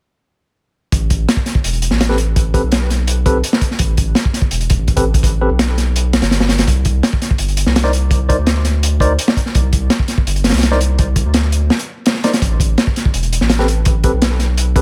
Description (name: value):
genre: drum and bass, jungle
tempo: 167 BPM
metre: 4/4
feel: straight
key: A minor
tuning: A4 = 439 Hz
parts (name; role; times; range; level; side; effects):
- saturated sub bass; bass; 0.9-14.8 s; E1 to D2; -18 LUFS; equal; tube saturation
- crunchy breakbeat drum kit; drums; 0.9-14.8 s; hi-hat, kick drum, snare drum; -17 LUFS; equal; none
- bright tine electric piano; stabs; 2.1-5.5, 7.8-14.8 s; C4 to D5; -24 LUFS; equal; dub echo
room: small room ambience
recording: none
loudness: -15 LUFS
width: mono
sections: 0.9-14.8 A section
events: none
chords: 0.9 A7sus2; 6.7 Csus2; 12.4 Asus2